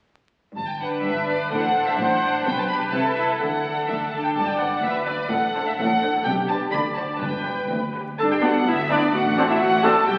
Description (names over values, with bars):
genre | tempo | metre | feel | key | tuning
quick classical-period movement for symphony orchestra | 126 BPM | 2/4 | rubato | G major | A4 = 444 Hz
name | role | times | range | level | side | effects
rich studio violin section | melody | 0.6-10.2 s | D5 to B5 | -28 LUFS | equal | none
warm chamber cello section | bass | 0.6-10.2 s | D2 to D4 | -31 LUFS | equal | none
warm studio double bass section | bass | 0.6-10.2 s | G1 to G2 | -36 LUFS | equal | none
rich symphonic violin section | second line | 0.8-10.2 s | D4 to A5 | -28 LUFS | equal | none
rich studio viola section | accompaniment | 1.0-10.0 s | B3 to D5 | -28 LUFS | equal | none
timpani | percussion | 4.4-5.0, 7.2-7.9 s | G2 | -39 LUFS | equal | none
mellow clarinet | second line | 8.2-10.2 s | D4 to A4 | -24 LUFS | equal | none
room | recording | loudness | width
wet scoring stage reverb, RT60 1.5 s | very old 78 rpm record, vinyl crackle | -22 LUFS | mono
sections
0.6-8.2 A section; 8.2-10.2 B section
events
none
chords
0.6 G; 1.5 D7/A; 2.5 G/B; 2.9 Am/C; 3.4 D; 4.4 G; 5.3 D7/A; 6.3 G/B; 6.7 D7; 7.2 G; 9.1 D5/A